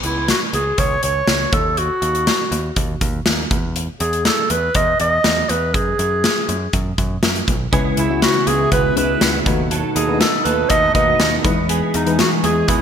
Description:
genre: 1980s-style pop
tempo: 121 BPM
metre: 4/4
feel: straight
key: unclear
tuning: A4 = 439 Hz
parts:
  - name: warm clarinet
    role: melody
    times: 0.0-12.8 s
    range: D#4 to D#5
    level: -19 LUFS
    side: right 1 dB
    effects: ping-pong delay
  - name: direct-recorded clean electric guitar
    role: riff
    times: 0.0-0.3, 7.7-12.8 s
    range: F#3 to A4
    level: -26 LUFS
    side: right 6 dB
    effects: ensemble chorus, ping-pong delay
  - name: picked electric bass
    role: bass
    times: 0.0-12.8 s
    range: B1 to F#2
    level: -23 LUFS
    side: equal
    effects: none
  - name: big rock drum kit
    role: drums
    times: 0.0-12.8 s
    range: hi-hat, kick drum, snare drum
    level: -19 LUFS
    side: equal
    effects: gated reverb
  - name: FM electric piano with tremolo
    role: accompaniment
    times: 7.7-12.8 s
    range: C#3 to B4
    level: -23 LUFS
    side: left 5 dB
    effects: none
  - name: sweeping resonant pad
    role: sustained chords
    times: 8.2-12.8 s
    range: B2 to G#4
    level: -24 LUFS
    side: equal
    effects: chorus
room: moderate lush hall reverb, RT60 1.8 s, small room ambience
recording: bright 1980s-style digital production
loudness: -15 LUFS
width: side -8 dB against mid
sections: 0.0-12.8 A section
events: none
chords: 0.0 N.C.; 1.5 D#m; 3.5 Emaj7(no3); 5.7 G#7(no3); 7.7 C#m7; 9.5 B7; 11.4 Emaj7

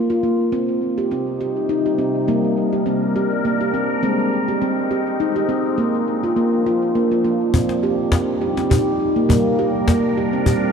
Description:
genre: world meditative, meditative tuned percussion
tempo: 103 BPM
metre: 3/4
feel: swing 55% on 16ths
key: C minor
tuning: A4 = 440 Hz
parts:
  - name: handpan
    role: arpeggios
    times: 0.0-10.7 s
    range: G3 to G4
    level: -18 LUFS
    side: right 1 dB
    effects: tape echo
  - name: evolving wavetable pad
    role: sustained chords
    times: 1.0-10.7 s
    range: C3 to Bb4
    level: -23 LUFS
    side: left 3 dB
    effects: phaser, built-in reverb
  - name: cajon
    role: percussion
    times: 7.5-10.6 s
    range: none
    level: -21 LUFS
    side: left 2 dB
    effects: none
room: wet cathedral reverb, RT60 6.4 s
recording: dark, warm production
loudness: -17 LUFS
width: side -6 dB against mid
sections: 0.0-7.5 A section; 7.5-10.7 B section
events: none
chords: 0.0 Bb5; 0.5 Cm; 2.3 Gm; 4.0 Ab; 5.8 Bb; 7.5 Cm; 9.3 Gm

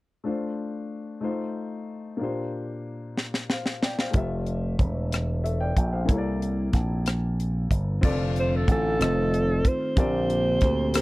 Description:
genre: slow gospel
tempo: 62 BPM (dotted quarters)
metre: 6/8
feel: straight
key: F major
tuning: A4 = 440 Hz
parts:
  - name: warm upright piano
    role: accompaniment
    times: 0.2-11.0 s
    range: Bb2 to G5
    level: -30 LUFS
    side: left 3 dB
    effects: none
  - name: tight funk drum kit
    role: drums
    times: 3.2-11.0 s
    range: crash cymbal, hi-hat, kick drum, rim click, snare drum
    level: -24 LUFS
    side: equal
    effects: none
  - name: slap bass with an envelope filter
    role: bass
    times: 4.1-11.0 s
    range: E1 to D2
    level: -26 LUFS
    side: equal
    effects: none
  - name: mellow tonewheel organ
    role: sustained chords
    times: 8.0-11.0 s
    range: D3 to G4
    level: -30 LUFS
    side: right 3 dB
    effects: slow rotary speaker, chorus vibrato
  - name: warm alto saxophone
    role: melody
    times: 8.4-11.0 s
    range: A4 to C5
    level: -26 LUFS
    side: equal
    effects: none
room: little or no reverb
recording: dry, close 1970s-style studio recording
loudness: -23 LUFS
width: side -20 dB against mid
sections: 0.2-8.0 A section; 8.0-11.0 B section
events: drum fill 3.2-4.1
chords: 0.2 F6; 1.2 F7; 2.2 Bb69; 4.1 Fmaj9; 6.1 C13; 8.0 F6; 9.0 F7; 10.0 Bb69

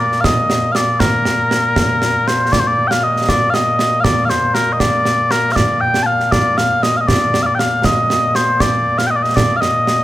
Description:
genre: scottish traditional, Scottish pipe music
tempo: 79 BPM (dotted quarters)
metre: 6/8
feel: straight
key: Bb major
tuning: A4 = 442 Hz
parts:
  - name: mellow small bagpipes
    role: melody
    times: 0.0-10.0 s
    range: Bb2 to A5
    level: -14 LUFS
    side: left 1 dB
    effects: none
  - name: concert snare drum and concert bass drum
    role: drums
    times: 0.1-10.0 s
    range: none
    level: -18 LUFS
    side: right 2 dB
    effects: none
room: moderate recital hall reverb, RT60 1.7 s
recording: none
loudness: -13 LUFS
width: side -15 dB against mid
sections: 0.0-2.5 A section; 2.5-10.0 B section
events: none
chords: none

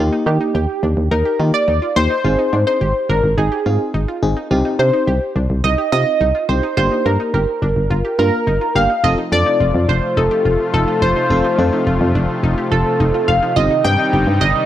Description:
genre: pop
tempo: 106 BPM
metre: 4/4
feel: straight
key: unclear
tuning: A4 = 440 Hz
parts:
  - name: FM electric piano with tremolo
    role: accompaniment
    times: 0.0-14.4 s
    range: Bb3 to Bb5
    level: -22 LUFS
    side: left 2 dB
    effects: none
  - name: analog pluck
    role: arpeggios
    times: 0.0-14.6 s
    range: D4 to G4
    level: -27 LUFS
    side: equal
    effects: chorus, analog delay
  - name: solid FM bass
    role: bass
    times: 0.0-14.5 s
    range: F1 to Eb3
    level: -17 LUFS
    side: equal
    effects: none
  - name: funky polysynth comp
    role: melody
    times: 0.3-14.7 s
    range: G4 to G5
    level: -17 LUFS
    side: right 1 dB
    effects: chorus
  - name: brassy analog pad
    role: sustained chords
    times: 9.0-14.7 s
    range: C3 to F4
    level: -21 LUFS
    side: equal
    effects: chorus
room: light reverb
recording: dry, gritty hardware recording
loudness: -14 LUFS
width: side -12 dB against mid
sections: 0.0-9.0 A section; 9.0-14.7 B section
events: FM electric piano fill 8.2-9.0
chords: 0.0 Eb; 2.2 Ab; 4.5 Cm; 6.8 Gm; 9.0 F; 13.6 Cm/G

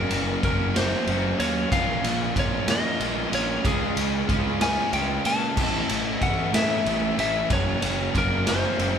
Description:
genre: quiet-loud alternative rock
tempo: 62 BPM (dotted quarters)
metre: 6/8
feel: straight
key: unclear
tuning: A4 = 440 Hz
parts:
  - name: lightly driven lead guitar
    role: melody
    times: 0.0-9.0 s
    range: Ab4 to A5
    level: -28 LUFS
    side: left 2 dB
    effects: none
  - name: cranked stack guitar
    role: riff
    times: 0.0-9.0 s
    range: Gb2 to Gb4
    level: -30 LUFS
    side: left 8 dB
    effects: overdrive
  - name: sludgy distorted guitar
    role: riff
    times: 0.0-9.0 s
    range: Gb2 to Gb4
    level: -29 LUFS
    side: right 7 dB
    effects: overdrive
  - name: fuzz picked electric bass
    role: bass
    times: 0.0-9.0 s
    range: Gb1 to Bb2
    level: -30 LUFS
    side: equal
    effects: overdrive
  - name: raw garage drum kit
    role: drums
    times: 0.1-8.9 s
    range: crash cymbal, kick drum, ride cymbal, snare drum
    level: -26 LUFS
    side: equal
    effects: none
room: light reverb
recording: band playing live in one room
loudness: -21 LUFS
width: side -7 dB against mid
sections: 0.0-9.0 A section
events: none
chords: 0.0 Gb; 1.7 Bbm; 3.6 Db; 5.6 A; 7.5 Gb

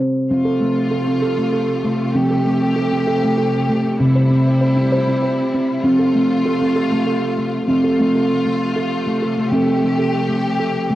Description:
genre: world meditative, meditative tuned percussion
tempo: 65 BPM (dotted quarters)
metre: 6/8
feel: straight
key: F major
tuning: A4 = 443 Hz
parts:
  - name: steel tongue drum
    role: arpeggios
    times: 0.0-11.0 s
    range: C3 to C5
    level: -16 LUFS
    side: equal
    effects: cassette tape, tape echo
  - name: clear symphonic string section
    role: sustained chords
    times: 0.3-11.0 s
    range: C3 to G4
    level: -23 LUFS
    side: left 1 dB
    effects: cassette tape
room: wet booth ambience, RT60 0.2 s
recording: home recording on cassette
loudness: -15 LUFS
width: side -14 dB against mid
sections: 0.0-7.7 A section; 7.7-11.0 B section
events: none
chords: 0.3 F; 4.0 C; 5.8 F

